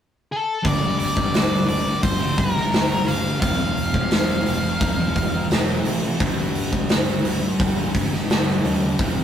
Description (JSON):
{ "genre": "rock, shoegaze and dream pop", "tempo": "86 BPM", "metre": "4/4", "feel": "straight", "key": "G minor", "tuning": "A4 = 438 Hz", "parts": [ { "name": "octave-fuzz lead guitar", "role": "melody", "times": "0.3-5.5 s", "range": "A4 to F5", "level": "-25 LUFS", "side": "left 2 dB", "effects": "distortion" }, { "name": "thick fuzz guitar", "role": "riff", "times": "0.6-9.2 s", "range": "F2 to G3", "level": "-24 LUFS", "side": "equal", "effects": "distortion" }, { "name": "modern bright picked electric bass", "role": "bass", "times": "0.6-9.2 s", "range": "F1 to Eb2", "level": "-30 LUFS", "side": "left 1 dB", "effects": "none" }, { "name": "big rock drum kit", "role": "drums", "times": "0.6-9.2 s", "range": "hi-hat, kick drum, snare drum", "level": "-21 LUFS", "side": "equal", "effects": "none" } ], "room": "wet studio reverb, RT60 0.5 s", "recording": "rough rehearsal-room recording, warm saturation", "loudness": "-18 LUFS", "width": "side -9 dB against mid", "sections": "0.6-9.2 A section", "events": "none", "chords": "0.0 N.C.; 0.6 Gm; 3.4 F5; 6.2 G5" }